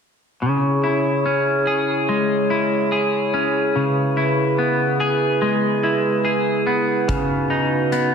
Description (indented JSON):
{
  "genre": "dream pop",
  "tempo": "72 BPM",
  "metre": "4/4",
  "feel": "straight",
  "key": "C# minor",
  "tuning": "A4 = 440 Hz",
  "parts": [
    { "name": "glass harmonica", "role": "sustained chords", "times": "0.6-8.1 s", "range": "D#4 to C#5", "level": "-21 LUFS", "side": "right 2 dB", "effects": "none" },
    { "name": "clean electric guitar", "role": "arpeggios", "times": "0.4-8.1 s", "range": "C#3 to G#4", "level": "-19 LUFS", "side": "left 2 dB", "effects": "wide subtle chorus, ping-pong delay" },
    { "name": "huge arena drum kit", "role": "drums", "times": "7.1-8.1 s", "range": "hi-hat, kick drum", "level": "-28 LUFS", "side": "right 1 dB", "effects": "none" }
  ],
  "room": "moderate concert hall reverb, RT60 2.2 s",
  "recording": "none",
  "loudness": "-17 LUFS",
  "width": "side -6 dB against mid",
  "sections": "0.4-8.1 A section",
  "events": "none",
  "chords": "0.4 C#m; 3.8 E/C#; 7.1 B/C#"
}